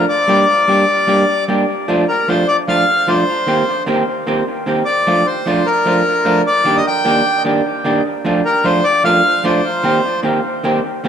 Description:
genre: ska.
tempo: 151 BPM.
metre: 4/4.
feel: straight.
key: unclear.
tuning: A4 = 440 Hz.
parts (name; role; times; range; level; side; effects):
accordion; melody; 0.0-10.2 s; Bb4 to G5; -15 LUFS; left 1 dB; tube saturation, dub echo.
vintage hollow-body jazz guitar; accompaniment; 0.0-11.1 s; Eb3 to G4; -16 LUFS; right 2 dB; dub echo.
room: wet club reverb, RT60 0.7 s.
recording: none.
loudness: -12 LUFS.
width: side -8 dB against mid.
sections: 0.0-11.1 A section.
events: none.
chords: 0.1 Gm; 1.7 F6; 3.3 Cm7; 4.9 Bbmaj7; 6.4 Ebmaj7; 8.0 F6; 9.6 Cm7.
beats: | 0.08 0.48 0.87 1.27 | 1.67 2.07 2.47 2.86 | 3.26 3.66 4.06 4.46 | 4.86 5.25 5.65 6.05 | 6.45 6.85 7.25 7.64 | 8.04 8.44 8.84 9.24 | 9.63 10.03 10.43 10.83.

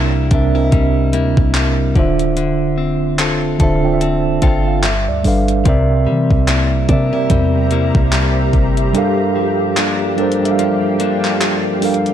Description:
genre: contemporary R&B.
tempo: 73 BPM.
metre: 4/4.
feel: swing 58% on 16ths.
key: G dorian.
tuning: A4 = 440 Hz.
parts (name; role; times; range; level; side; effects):
mellow tine electric piano; accompaniment; 0.0-12.1 s; C3 to A5; -16 LUFS; right 3 dB; slow stereo tremolo.
direct-recorded clean electric guitar; arpeggios; 0.0-12.1 s; G2 to A4; -22 LUFS; left 9 dB; tape echo.
clean 808-style bass; bass; 0.0-8.9 s; D1 to E3; -18 LUFS; equal; none.
gated 80s digital drum machine; drums; 0.3-12.1 s; handclaps, hi-hat, kick drum; -18 LUFS; equal; gated reverb, overdrive.
granular cloud pad; sustained chords; 6.9-12.1 s; G4 to Bb5; -23 LUFS; left 1 dB; built-in reverb.
room: light reverb, digital ambience.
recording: dark, warm production.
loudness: -13 LUFS.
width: side -10 dB against mid.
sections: 0.0-12.1 A section.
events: tine electric piano fill 3.2-5.7; kick muted 8.9-12.1.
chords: 0.0 C7; 2.0 Dm7; 4.8 G7; 5.7 C7; 8.9 Gm7.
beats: 0.72 1.54 | 2.37 3.19 4.01 4.83 | 5.66 6.48 7.30 8.12 | 8.94 9.77 10.59 11.41.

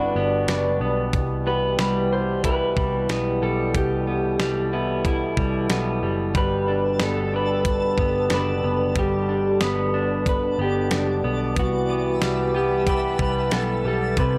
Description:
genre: dream pop.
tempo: 92 BPM.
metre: 4/4.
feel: straight.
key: unclear.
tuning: A4 = 439 Hz.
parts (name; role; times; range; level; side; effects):
electric guitar through a small old amp; melody; 0.0-14.4 s; D4 to C5; -27 LUFS; equal; spring reverb, tape echo.
mellow French horn section; sustained chords; 0.0-14.4 s; B2 to B4; -30 LUFS; equal; none.
clean electric guitar; arpeggios; 0.0-14.4 s; C3 to G4; -30 LUFS; equal; lush chorus, tape echo.
vintage muted picked electric bass; bass; 0.0-14.4 s; F#1 to C2; -30 LUFS; equal; none.
detuned 8-bit digital drum machine; drums; 0.5-14.3 s; hi-hat, kick drum, snare drum; -28 LUFS; equal; none.
twinkling granular texture; texture; 6.7-14.3 s; A4 to A5; -40 LUFS; equal; built-in reverb, tape echo.
room: light reverb.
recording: dry, gritty hardware recording.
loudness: -23 LUFS.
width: mono.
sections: 0.0-14.4 A section.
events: none.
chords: 0.0 Gmaj7; 1.1 Cmaj7; 6.4 Gmaj7; 11.6 Cmaj7.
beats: 0.48 | 1.13 1.79 2.44 3.09 | 3.74 4.39 5.05 5.70 | 6.35 7.00 7.66 8.31 | 8.96 9.61 10.27 10.92 | 11.57 12.22 12.87 13.53 | 14.18.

